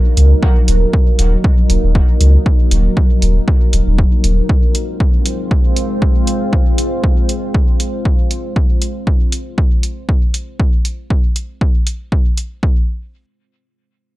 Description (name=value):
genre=dub techno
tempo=118 BPM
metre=4/4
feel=swing 55% on 16ths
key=unclear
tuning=A4 = 440 Hz
part: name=deep dark ambient pad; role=sustained chords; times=0.0-8.5 s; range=Gb3 to C5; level=-21 LUFS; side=equal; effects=chorus, built-in reverb, sidechain pumping
part: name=warm sub bass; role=bass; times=0.2-4.4 s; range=Eb1 to Db2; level=-11 LUFS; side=equal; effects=sidechain pumping
part: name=electronic hi-hat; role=drums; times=0.2-12.5 s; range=none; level=-21 LUFS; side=right 1 dB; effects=none
part: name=electronic kick drum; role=drums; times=0.4-12.7 s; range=none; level=-13 LUFS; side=equal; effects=none
room=digital ambience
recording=dark, warm production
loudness=-12 LUFS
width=side -17 dB against mid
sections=0.0-12.6 A section; 12.6-14.2 B section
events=none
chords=0.0 Ebm; 4.5 Fm; 12.6 N.C.